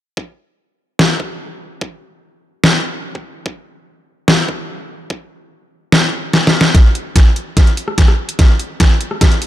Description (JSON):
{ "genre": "heavy wobble dubstep", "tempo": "146 BPM", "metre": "4/4", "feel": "half-time", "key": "none", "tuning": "none", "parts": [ { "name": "electronic kick drum", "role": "drums", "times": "0.2-9.3 s", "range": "none", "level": "-11 LUFS", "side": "equal", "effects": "overdrive, high-pass filter on kick, high-pass filter on room" }, { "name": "dubstep drum kit", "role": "drums", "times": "1.0-9.5 s", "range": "hi-hat, rim click, snare drum", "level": "-14 LUFS", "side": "left 1 dB", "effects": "overdrive" } ], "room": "light reverb", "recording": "dark, warm production", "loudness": "-11 LUFS", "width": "side -13 dB against mid", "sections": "0.2-6.7 A section; 6.7-9.5 B section", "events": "kick drops out 5.9-6.7; drum fill 6.3-6.7, 6.7-9.5; build-up 6.7-9.5; filter sweep 6.7-9.5", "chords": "none" }